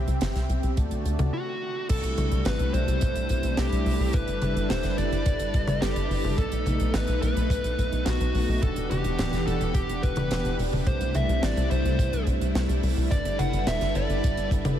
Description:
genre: synthwave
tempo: 107 BPM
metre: 4/4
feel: straight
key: unclear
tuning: A4 = 440 Hz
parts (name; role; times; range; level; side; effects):
- soft supersaw; sustained chords; 0.0-14.8 s; C3 to A5; -30 LUFS; equal; sidechain pumping
- tight sequencer bass; bass; 0.0-14.8 s; D1 to D2; -27 LUFS; equal; sidechain pumping
- tight funk drum kit; drums; 0.1-14.8 s; crash cymbal, hi-hat, snare drum, toms; -33 LUFS; equal; none
- kick drum; drums; 0.8-14.6 s; none; -26 LUFS; equal; none
- dark smooth lead guitar; melody; 1.3-14.5 s; F#4 to F#5; -30 LUFS; equal; overdrive, tape echo
room: light reverb, studio ambience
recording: none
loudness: -23 LUFS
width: side -10 dB against mid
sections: 0.0-1.9 A section; 1.9-14.8 B section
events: stop 1.3-1.9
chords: 0.0 C; 0.8 D; 1.9 C6; 4.1 G6; 6.4 B7; 8.6 Em7; 10.9 C6; 13.1 G6

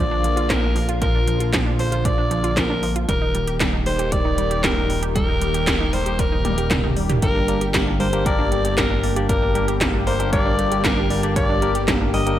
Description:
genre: synthwave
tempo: 116 BPM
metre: 4/4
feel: straight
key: G minor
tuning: A4 = 439 Hz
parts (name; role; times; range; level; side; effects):
- raspy alto saxophone; melody; 0.0-12.4 s; Bb4 to Eb5; -24 LUFS; left 1 dB; digital delay
- lush unison pad; sustained chords; 0.0-12.4 s; D3 to G4; -27 LUFS; equal; chorus, phaser, sidechain pumping
- wide unison pluck; arpeggios; 0.0-12.4 s; F3 to G4; -29 LUFS; right 3 dB; digital delay
- fat analog bass; bass; 0.0-12.4 s; Eb1 to Bb1; -24 LUFS; equal; none
- 80s electronic pad drums; drums; 0.2-12.4 s; handclaps, hi-hat, snare drum, toms; -24 LUFS; equal; gated reverb on snare and toms
- electronic kick drum; drums; 0.5-12.0 s; none; -24 LUFS; equal; none
- barky tine electric piano; stabs; 7.2-12.4 s; Bb3 to D5; -26 LUFS; left 3 dB; none
room: light reverb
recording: bright 1980s-style digital production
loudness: -17 LUFS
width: side -12 dB against mid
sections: 0.0-12.4 A section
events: drum fill 6.4-7.2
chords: 0.0 Bb; 3.1 Eb; 7.2 Gm

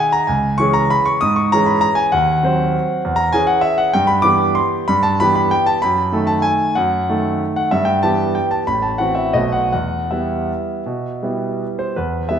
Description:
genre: classical, piano waltz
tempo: 154-211 BPM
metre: 3/4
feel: rubato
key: E minor from 3.9 s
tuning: A4 = 441 Hz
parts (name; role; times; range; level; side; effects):
- clear concert grand piano; solo; 0.0-12.4 s; A1 to D#6; -15 LUFS; equal; none
room: wet scoring stage reverb, RT60 1.8 s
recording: minimal, uncompressed stereo recording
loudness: -15 LUFS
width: side -8 dB against mid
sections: 0.0-12.0 A section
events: none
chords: 0.3 C#m; 2.1 Cdim/Eb; 3.0 C#m/E; 3.9 Em/G; 5.8 D#dim/F#; 7.7 Em/G; 8.7 F#m7b5/A; 9.3 B7; 9.7 Em

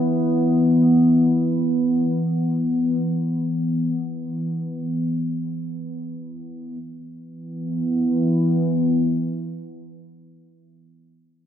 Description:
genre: ambient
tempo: free time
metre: none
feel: none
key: unclear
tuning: A4 = 440 Hz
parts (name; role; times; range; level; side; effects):
- analog drone; drone; 0.0-10.3 s; E3 to B3; -20 LUFS; equal; chorus
room: wet echo chamber reverb, RT60 2.4 s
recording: none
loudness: -19 LUFS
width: side -9 dB against mid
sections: 0.0-6.8 A section; 6.8-10.2 B section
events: none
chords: 0.0 E5

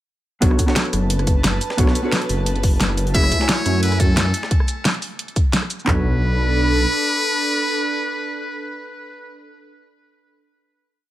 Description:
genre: liquid drum and bass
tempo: 176 BPM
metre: 4/4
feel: swing 54% on 16ths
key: B dorian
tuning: A4 = 440 Hz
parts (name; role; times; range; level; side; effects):
- hollow-body jazz guitar; accompaniment; 0.4-9.7 s; A3 to G#5; -26 LUFS; equal; digital delay
- airy breathy pad; sustained chords; 0.4-9.4 s; A3 to E6; -27 LUFS; right 2 dB; chorus, sidechain pumping
- dark detuned saw bass; bass; 0.4-6.9 s; F#1 to F#2; -20 LUFS; equal; none
- breakbeat sampler-style drum kit; drums; 0.4-4.5 s; hi-hat, snare drum; -28 LUFS; left 1 dB; high-pass filter on hats, studio ambience, high-pass filter on snare
- pop drum kit; drums; 0.4-6.0 s; handclaps, kick drum, toms; -18 LUFS; equal; studio ambience
- pop drum kit; drums; 0.4-5.9 s; hi-hat, rim click, shaker, snare drum; -22 LUFS; equal; studio ambience
- trumpet with metal mute; melody; 3.1-9.4 s; A4 to E5; -22 LUFS; equal; digital delay
room: little or no reverb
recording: none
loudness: -16 LUFS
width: side -14 dB against mid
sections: 0.4-5.9 drop; 5.9-8.6 final chord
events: drop 0.4-5.9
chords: 0.4 Bm7; 3.1 F#m9; 5.9 Bm7

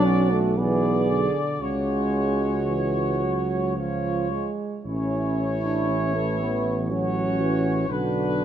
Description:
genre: classical, hymn-like piece for brass band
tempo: 54-62 BPM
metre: 3/4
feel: rubato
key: unclear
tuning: A4 = 438 Hz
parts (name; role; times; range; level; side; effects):
- clear trumpet section; melody; 0.0-8.4 s; B4 to D5; -30 LUFS; left 6 dB; none
- warm French horn section; second line; 0.0-8.4 s; E4 to G#4; -29 LUFS; right 8 dB; none
- mellow trombone; accompaniment; 0.0-8.4 s; C#3 to G#3; -28 LUFS; right 3 dB; none
- warm euphonium; accompaniment; 0.0-8.4 s; G#3 to D4; -28 LUFS; left 2 dB; none
- mellow tuba; bass; 0.0-8.4 s; A1 to C#2; -27 LUFS; right 1 dB; none
room: light reverb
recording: close, detailed microphones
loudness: -22 LUFS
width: side -10 dB against mid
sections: 0.0-8.4 A section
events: none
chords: 0.0 Bm; 0.6 G#dim/B; 1.6 C#sus4; 3.8 C#; 4.8 A; 6.9 F#m/A; 7.9 Bm

